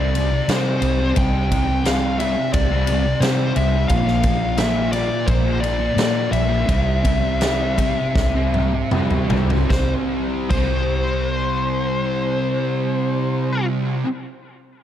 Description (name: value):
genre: rock, shoegaze and dream pop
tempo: 75-88 BPM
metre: 4/4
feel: straight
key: C mixolydian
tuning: A4 = 440 Hz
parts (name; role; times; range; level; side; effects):
- fuzz lead guitar; melody; 0.0-13.7 s; C5 to G5; -24 LUFS; left 3 dB; distortion, tape echo
- thick fuzz guitar; riff; 0.0-14.1 s; Bb2 to C4; -22 LUFS; equal; distortion, analog chorus
- vintage muted fingered electric bass; bass; 0.0-13.8 s; Bb1 to C3; -22 LUFS; equal; none
- huge arena drum kit; drums; 0.1-10.7 s; crash cymbal, kick drum, ride cymbal, snare drum, toms; -23 LUFS; equal; none
room: light reverb, small room reverb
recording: dark, warm production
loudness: -17 LUFS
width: side -10 dB against mid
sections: 0.0-9.7 A section; 9.7-12.9 B section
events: slowing down 3.9-9.7; drum fill 8.2-9.7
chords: 0.0 C5; 3.9 Bb; 6.7 C5